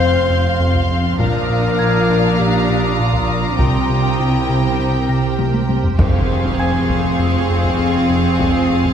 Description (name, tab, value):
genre	cinematic, suspense film score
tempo	100 BPM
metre	4/4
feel	straight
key	unclear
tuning	A4 = 440 Hz
part	clear studio violin section	melody	0.0-8.9 s	F5 to C6	-27 LUFS	left 2 dB	none
part	warm clarinet	second line	0.0-5.7 s	E4 to C5	-22 LUFS	left 2 dB	none
part	warm studio violin section	second line	0.0-8.9 s	Ab4 to G5	-25 LUFS	left 1 dB	none
part	warm studio viola section	accompaniment	0.0-8.9 s	C4 to D4	-23 LUFS	right 1 dB	none
part	soft additive organ-like pad	sustained chords	0.0-8.9 s	C4 to F5	-24 LUFS	equal	ensemble chorus, built-in reverb
part	round analog bass	riff	0.0-8.9 s	F2 to C3	-20 LUFS	left 2 dB	none
part	rich studio double bass section	bass	0.0-8.9 s	F1 to C2	-22 LUFS	right 2 dB	none
part	warm studio cello section	bass	0.0-8.9 s	F2 to C3	-23 LUFS	right 4 dB	none
part	dark studio violin section	texture	0.0-8.9 s	C6 to C7	-30 LUFS	left 2 dB	none
part	taiko ensemble	drums	0.7-8.9 s	none	-21 LUFS	equal	none
part	music box	texture	1.8-8.4 s	Ab5 to Bb6	-29 LUFS	equal	none
part	impact	sound effects	6.0-8.4 s	none	-25 LUFS	equal	none
room	wet scoring stage reverb, RT60 1.6 s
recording	minimal, uncompressed stereo recording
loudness	-14 LUFS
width	side -8 dB against mid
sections	0.0-6.0 A section; 6.0-8.9 B section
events	drum fill 5.4-6.0; impact 6.0-8.4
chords	0.0 Fm; 1.2 Bb; 3.6 C7; 6.0 Fm